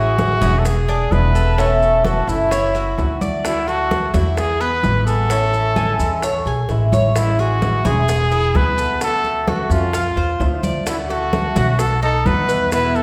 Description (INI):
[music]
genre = latin, Cuban son and guajira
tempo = 129 BPM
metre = 4/4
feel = straight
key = A major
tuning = A4 = 440 Hz
[part]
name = breathy trumpet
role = melody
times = 0.0-13.0 s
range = E4 to B4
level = -23 LUFS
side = equal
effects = none
[part]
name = fingerpicked swing-style acoustic guitar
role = accompaniment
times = 0.0-13.0 s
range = B2 to F#4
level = -26 LUFS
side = equal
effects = none
[part]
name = Cuban tres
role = arpeggios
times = 0.0-13.0 s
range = B3 to G#5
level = -28 LUFS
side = equal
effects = none
[part]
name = upright bass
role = bass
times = 0.0-13.0 s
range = E1 to F2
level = -22 LUFS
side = equal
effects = none
[part]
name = bongos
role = percussion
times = 0.2-13.0 s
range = none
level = -32 LUFS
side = equal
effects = none
[part]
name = congas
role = percussion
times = 0.2-13.0 s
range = none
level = -28 LUFS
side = equal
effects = none
[part]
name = maracas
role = percussion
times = 0.2-13.0 s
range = none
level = -39 LUFS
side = equal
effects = none
[sound]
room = wet recital hall reverb, RT60 1.3 s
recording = recorded in a church or concert hall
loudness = -18 LUFS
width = mono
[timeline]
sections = 0.0-7.2 A section; 7.2-13.0 A section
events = drum fill 6.7-7.2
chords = 0.0 Amaj7; 0.7 E7; 1.6 Aadd9/E; 2.5 F#m7; 3.4 D; 4.4 Eadd9; 5.3 Amaj7; 8.1 Eadd9; 9.0 Dmaj7; 9.9 F; 10.9 Dmaj7; 11.8 B7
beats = 0.18 0.65 1.12 | 1.58 2.05 2.51 2.98 | 3.44 3.91 4.37 4.84 | 5.30 5.77 6.23 6.70 | 7.16 7.62 8.09 8.55 | 9.01 9.48 9.94 10.40 | 10.87 11.33 11.79 12.26 | 12.72